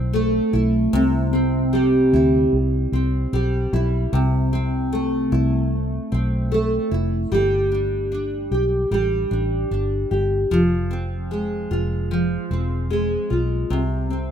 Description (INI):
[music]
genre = acoustic pop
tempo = 75 BPM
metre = 4/4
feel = straight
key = unclear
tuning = A4 = 440 Hz
[part]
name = nylon-string guitar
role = accompaniment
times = 0.0-14.3 s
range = C3 to G4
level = -20 LUFS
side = equal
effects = double-tracked left and right
[part]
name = vintage muted fingered electric bass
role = bass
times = 0.0-14.3 s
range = E1 to D2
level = -22 LUFS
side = equal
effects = none
[sound]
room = light reverb, small room ambience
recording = rough home demo mix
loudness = -18 LUFS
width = side -8 dB against mid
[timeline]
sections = 0.0-7.3 A section; 7.3-14.3 B section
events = none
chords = 0.0 Amadd9/B; 0.9 Cmaj7; 4.1 Fmaj7/C (rootless); 7.3 G5; 10.5 Fm; 13.7 N.C.